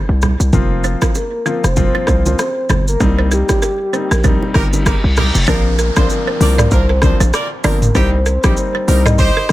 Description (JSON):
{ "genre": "afrobeats", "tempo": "97 BPM", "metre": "4/4", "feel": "swing 58% on 16ths", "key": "unclear", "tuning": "A4 = 440 Hz", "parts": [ { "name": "soft octave-layered synth lead", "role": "melody", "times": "0.0-9.5 s", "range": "G4 to Eb5", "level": "-21 LUFS", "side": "equal", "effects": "chorus, tremolo, digital delay" }, { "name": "hard-hitting 808-style bass", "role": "bass", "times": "0.0-9.3 s", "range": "F1 to C2", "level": "-14 LUFS", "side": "equal", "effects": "none" }, { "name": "afro-pop drum kit", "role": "drums", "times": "0.2-9.5 s", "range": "hi-hat, kick drum, rim click, shaker, toms", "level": "-17 LUFS", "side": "equal", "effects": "none" }, { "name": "bongos and congas", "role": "percussion", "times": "0.2-5.3 s", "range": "none", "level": "-24 LUFS", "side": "right 5 dB", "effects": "none" }, { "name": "warm grand piano", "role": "accompaniment", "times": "0.5-9.5 s", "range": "F3 to F4", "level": "-21 LUFS", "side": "left 4 dB", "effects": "none" }, { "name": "balafon", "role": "riff", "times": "0.8-9.4 s", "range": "Bb4 to Eb5", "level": "-24 LUFS", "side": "right 4 dB", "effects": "digital delay" }, { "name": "reverse cymbal and downlifter", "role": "sound effects", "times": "4.6-9.5 s", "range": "none", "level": "-26 LUFS", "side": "left 1 dB", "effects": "none" }, { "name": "warm horn section", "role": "second line", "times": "4.5-9.5 s", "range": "C4 to D5", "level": "-22 LUFS", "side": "right 3 dB", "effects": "none" } ], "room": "little or no reverb", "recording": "none", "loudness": "-12 LUFS", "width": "side -16 dB against mid", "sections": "0.0-5.5 A section; 5.5-9.5 B section", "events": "band accent 3.0-5.5; reverse cymbal 4.6-5.5", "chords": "0.0 N.C.; 0.5 Fsus4; 3.0 Cm7; 5.5 Bbadd9; 8.0 Cm7" }